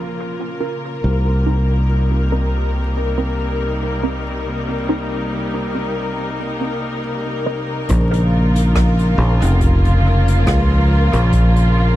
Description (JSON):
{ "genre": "ambient dub", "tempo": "70 BPM", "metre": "4/4", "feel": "swing 55% on 16ths", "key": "Bb dorian", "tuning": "A4 = 440 Hz", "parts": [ { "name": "dark studio string section", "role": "sustained chords", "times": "0.0-12.0 s", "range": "C3 to Bb4", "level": "-21 LUFS", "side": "left 1 dB", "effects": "none" }, { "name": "filtered dub chord stab", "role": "stabs", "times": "0.0-7.8 s", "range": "C4 to Bb4", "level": "-27 LUFS", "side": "right 2 dB", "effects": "phaser, analog chorus, dub echo" }, { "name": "fingered electric bass", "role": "bass", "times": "0.0-12.0 s", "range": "F1 to Db2", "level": "-16 LUFS", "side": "equal", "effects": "none" }, { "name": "electronic kick drum", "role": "drums", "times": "7.9-11.5 s", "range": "none", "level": "-20 LUFS", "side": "equal", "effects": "none" }, { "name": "jazz brush drum kit", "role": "drums", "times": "7.9-11.7 s", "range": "hi-hat, rim click", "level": "-30 LUFS", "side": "left 1 dB", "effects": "low-pass filter on hats, low-pass filter on snare, low-pass filter on room, dub echo" } ], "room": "little or no reverb", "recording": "vinyl crackle", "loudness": "-15 LUFS", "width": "side -14 dB against mid", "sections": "0.0-7.9 A section; 7.9-12.0 B section", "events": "none", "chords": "0.0 Bbm; 1.0 Cm7; 7.9 Bbm" }